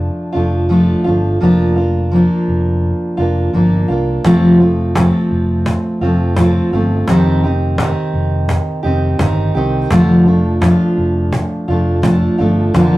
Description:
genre	acoustic pop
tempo	85 BPM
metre	4/4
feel	straight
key	unclear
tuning	A4 = 440 Hz
part	fingerpicked steel-string acoustic guitar	accompaniment	0.0-13.0 s	F2 to G4	-13 LUFS	equal	none
part	fretless electric bass	bass	0.0-13.0 s	F1 to C2	-18 LUFS	equal	none
part	cajon	drums	4.2-12.9 s	none	-19 LUFS	equal	none
room	moderate studio reverb, RT60 0.6 s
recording	rough rehearsal-room recording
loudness	-12 LUFS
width	side -18 dB against mid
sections	0.0-13.0 A section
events	none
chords	0.0 Dm/F; 1.4 Bb/F; 4.2 F; 7.1 Cm/F; 9.9 Dm/F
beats	0.70 | 1.41 2.12 2.83 3.53 | 4.24 4.95 5.66 6.37 | 7.08 7.79 8.49 9.20 | 9.91 10.62 11.33 12.04 | 12.75

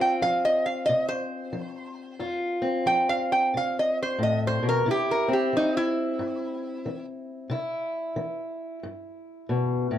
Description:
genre	blues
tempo	90 BPM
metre	4/4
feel	swing 63% on 8ths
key	C major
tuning	A4 = 440 Hz
part	lap resonator guitar	melody	0.0-7.0 s	Eb4 to G5	-24 LUFS	right 1 dB	none
part	fingerpicked steel-string acoustic guitar	accompaniment	0.0-10.0 s	F2 to F4	-28 LUFS	left 2 dB	none
room	moderate studio reverb, RT60 0.5 s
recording	dark, warm production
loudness	-24 LUFS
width	side -11 dB against mid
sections	0.0-10.0 A section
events	resonator guitar played with a steel bar solo 0.0-10.0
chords	0.0 F5; 4.9 C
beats	0.20 0.86 1.53 | 2.20 2.86 3.53 4.19 | 4.86 5.53 6.19 6.86 | 7.52 8.18 8.85 9.51

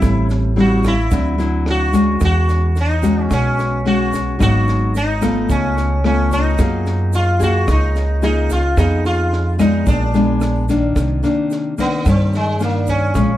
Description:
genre	bossa nova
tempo	110 BPM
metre	4/4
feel	straight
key	unclear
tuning	A4 = 439 Hz
part	sitar	melody	0.0-13.4 s	Ab3 to Gb4	-21 LUFS	equal	none
part	nylon-string guitar	accompaniment	0.0-13.4 s	G2 to Ab4	-18 LUFS	left 2 dB	none
part	upright bass	bass	0.0-13.4 s	Ab1 to G2	-18 LUFS	right 1 dB	none
part	compact cocktail drum kit	drums	0.0-13.3 s	kick drum, rim click, snare drum	-24 LUFS	equal	none
part	egg shaker	percussion	0.0-13.4 s	none	-40 LUFS	right 8 dB	none
room	light reverb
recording	dark, warm production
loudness	-14 LUFS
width	side -13 dB against mid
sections	0.0-11.0 A section; 11.0-13.4 B section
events	sitar solo 11.0-13.4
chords	0.0 Am7; 1.1 D9; 2.2 E69; 4.4 Abm7; 5.5 Dbaug7; 6.6 Gbmaj9; 8.8 Fm7b5; 9.9 Bb7b9; 11.0 Cm9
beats	| 0.02 0.57 1.11 1.66 | 2.21 2.75 3.30 3.85 | 4.39 4.94 5.49 6.04 | 6.58 7.13 7.68 8.22 | 8.77 9.32 9.87 10.41 | 10.96 11.51 12.05 12.60 | 13.15

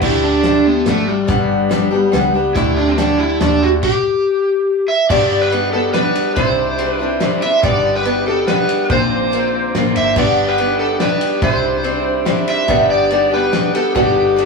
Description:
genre	folk rock and heartland rock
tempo	142 BPM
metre	3/4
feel	straight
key	G major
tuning	A4 = 440 Hz
part	overdriven slide guitar	melody	0.0-14.5 s	G3 to E5	-17 LUFS	right 1 dB	none
part	picked acoustic archtop guitar	accompaniment	0.0-14.5 s	G2 to A4	-17 LUFS	left 2 dB	none
part	mellow tonewheel organ	sustained chords	0.0-14.5 s	G4 to D6	-28 LUFS	right 5 dB	slow rotary speaker
part	vintage muted picked electric bass	bass	0.0-14.5 s	G1 to G2	-24 LUFS	equal	none
part	natural country drum kit	drums	0.0-14.5 s	crash cymbal, hi-hat, kick drum, ride cymbal, snare drum	-21 LUFS	equal	none
room	moderate small room reverb, RT60 0.5 s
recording	rough rehearsal-room recording, small room ambience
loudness	-13 LUFS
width	side -4 dB against mid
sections	0.0-5.1 A section; 5.1-14.5 B section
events	none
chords	0.0 Dsus4; 1.3 G; 2.6 Dsus4; 3.8 N.C.; 5.1 G; 6.4 Cadd9; 7.6 G; 8.9 Bbadd9; 10.2 G; 11.4 Cadd9; 12.7 G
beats	| 0.02 0.44 0.87 | 1.29 1.72 2.14 | 2.56 2.99 3.41 | 3.83 4.26 4.68 | 5.10 5.53 5.95 | 6.37 6.79 7.21 | 7.64 8.06 8.48 | 8.90 9.32 9.74 | 10.16 10.59 11.01 | 11.43 11.85 12.27 | 12.69 13.11 13.53 | 13.96 14.38

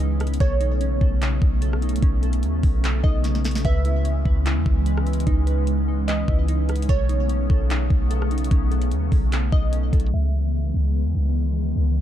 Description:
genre	hip hop, atmospheric cloud-rap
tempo	148 BPM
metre	4/4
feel	half-time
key	C# minor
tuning	A4 = 439 Hz
part	glassy FM pad	sustained chords	0.0-12.0 s	C#3 to C#4	-27 LUFS	left 1 dB	ensemble chorus, built-in reverb, sidechain pumping
part	glassy digital keys	arpeggios	0.0-10.1 s	C#4 to B4	-34 LUFS	right 2 dB	chorus, low-pass filter, ping-pong delay
part	clean 808-style bass	bass	0.0-12.0 s	B1 to E2	-21 LUFS	equal	none
part	smooth R&B drum kit	drums	0.0-10.1 s	handclaps, hi-hat, kick drum, rim click, snare drum	-22 LUFS	equal	none
part	glassy wavetable pluck	melody	0.4-11.3 s	C#5 to E5	-32 LUFS	right 2 dB	chorus, low-pass filter, ping-pong delay
room	little or no reverb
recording	dark, warm production, low-pass filter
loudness	-19 LUFS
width	side -11 dB against mid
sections	0.0-10.1 A section; 10.1-12.0 B section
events	drum fill 3.2-3.6; filter sweep 10.1-12.0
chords	0.4 B9; 3.6 C#m9; 6.9 B9; 10.1 C#m9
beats	0.00 | 0.40 0.81 1.21 1.62 | 2.02 2.43 2.84 3.24 | 3.65 4.05 4.46 4.86 | 5.27 5.67 6.08 6.49 | 6.89 7.29 7.70 8.11 | 8.51 8.92 9.32 9.73 | 10.13 10.54 10.94 11.35 | 11.76

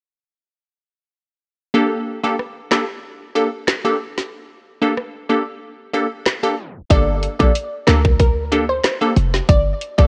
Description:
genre	dancehall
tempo	93 BPM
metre	4/4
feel	straight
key	G minor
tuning	A4 = 440 Hz
part	wavetable chord stab	accompaniment	1.7-10.1 s	Bb3 to A4	-22 LUFS	equal	phaser, sidechain pumping
part	island pop drum kit	drums	2.4-10.1 s	handclaps, hi-hat, kick drum, rim click, snare drum	-20 LUFS	equal	none
part	glassy wavetable pluck	melody	6.9-10.1 s	Bb4 to D5	-24 LUFS	equal	chorus, tape echo
part	short 808-style bass	bass	6.9-10.1 s	F1 to D2	-20 LUFS	equal	none
room	light reverb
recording	worn, warbling old tape, cassette tape, warbly pitch drift, tape stop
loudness	-19 LUFS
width	mono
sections	1.7-6.9 A section; 6.9-10.1 B section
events	tape stop 6.6-6.9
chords	1.7 Gmadd9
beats	| 1.75 2.39 3.04 3.68 | 4.33 4.97 5.62 6.26 | 6.91 7.55 8.20 8.84 | 9.49

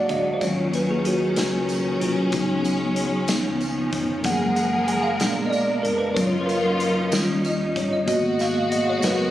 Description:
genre	slow gospel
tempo	63 BPM (dotted quarters)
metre	6/8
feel	straight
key	unclear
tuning	A4 = 439 Hz
part	bell-like tine electric piano	accompaniment	0.0-9.3 s	E#3 to G#5	-22 LUFS	equal	medium stereo tremolo
part	warm studio string section	sustained chords	0.0-9.3 s	B2 to A#4	-26 LUFS	left 1 dB	none
part	hollow-body short-scale fingered electric bass	bass	0.0-9.3 s	E#1 to D#2	-31 LUFS	equal	none
part	natural country drum kit	drums	0.1-9.2 s	hi-hat, kick drum, snare drum	-29 LUFS	equal	none
part	tambourine	percussion	0.4-9.3 s	none	-38 LUFS	right 2 dB	none
room	light reverb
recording	recorded on a phone in the room, studio reverb, compression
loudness	-20 LUFS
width	side -13 dB against mid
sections	0.0-9.3 A section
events	tine electric piano solo 0.0-9.3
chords	0.4 D#m7; 2.3 C#7sus4; 3.3 C#9; 4.3 F#maj9; 5.2 A#7b9; 6.2 D#m9/F#; 7.1 D#7; 8.1 G#m9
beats	| 0.42 1.38 | 2.34 3.30 | 4.25 5.21 | 6.17 7.12 | 8.08 9.04

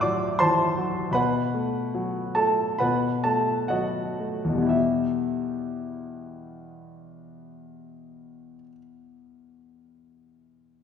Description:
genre	classical, romantic character piece for solo piano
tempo	58-82 BPM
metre	4/4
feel	rubato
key	E minor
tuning	A4 = 439 Hz
part	clear grand piano	solo	0.0-10.8 s	E2 to E6	-23 LUFS	left 1 dB	none
room	wet concert hall reverb, RT60 2.0 s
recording	heard from further back in the room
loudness	-22 LUFS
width	side -7 dB against mid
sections	0.0-4.7 A section; 4.7-8.7 B section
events	slowing down 0.0-4.7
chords	0.0 F#m7b5/A; 1.2 B5; 2.8 B7; 4.7 Em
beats	0.41 | 1.17 1.96 2.81 3.72 | 4.72 5.71 6.68 7.67

